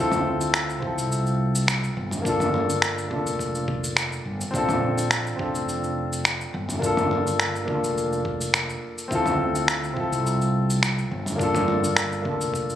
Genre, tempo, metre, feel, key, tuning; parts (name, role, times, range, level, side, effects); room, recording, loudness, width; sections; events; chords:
sunset chillout; 105 BPM; 4/4; straight; G dorian; A4 = 440 Hz
dark grand piano; accompaniment; 0.0-12.8 s; Bb3 to A4; -25 LUFS; left 1 dB; auto-pan, ping-pong delay
mellow fretless electric bass; bass; 0.0-12.8 s; F1 to D2; -28 LUFS; equal; tube saturation
dusty soul sampler-style drum kit; drums; 0.1-12.8 s; finger snaps, shaker, toms; -25 LUFS; equal
electronic kick drum; drums; 0.8-12.7 s; -33 LUFS; equal
light reverb; recorded on a phone in the room, club reverb, compression; -22 LUFS; side -11 dB against mid
0.0-12.8 A section
0.0 Dm7; 2.3 Gm7; 4.5 Bbmaj7; 6.5 Gm7; 9.1 Dm7; 11.4 Gm7